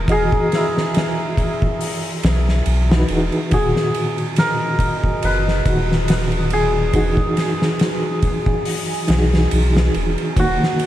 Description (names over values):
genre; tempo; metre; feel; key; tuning
trip hop; 70 BPM; 4/4; swing 56% on 16ths; unclear; A4 = 439 Hz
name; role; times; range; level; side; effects
cimbalom; melody; 0.0-10.9 s; E4 to Cb5; -23 LUFS; left 1 dB; vintage 12-bit sampler grit, tape echo
reed electric piano; accompaniment; 0.0-10.9 s; Bb2 to D#5; -22 LUFS; equal; overdrive, fast tremolo, tape echo
warm sub bass; bass; 0.0-10.6 s; Eb1 to B1; -19 LUFS; equal; none
oversized low-tuned drum kit; drums; 0.1-10.9 s; hi-hat, kick drum, ride cymbal, snare drum; -20 LUFS; equal; none
deep dark ambient pad; sustained chords; 4.4-10.9 s; Gb4 to Eb6; -28 LUFS; right 1 dB; chorus, built-in reverb
room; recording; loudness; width
light reverb, studio reverb; echo-heavy mix, vinyl crackle; -16 LUFS; side -13 dB against mid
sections
0.0-10.9 A section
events
none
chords
0.1 Emaj9; 3.5 Ebm; 6.9 Emaj9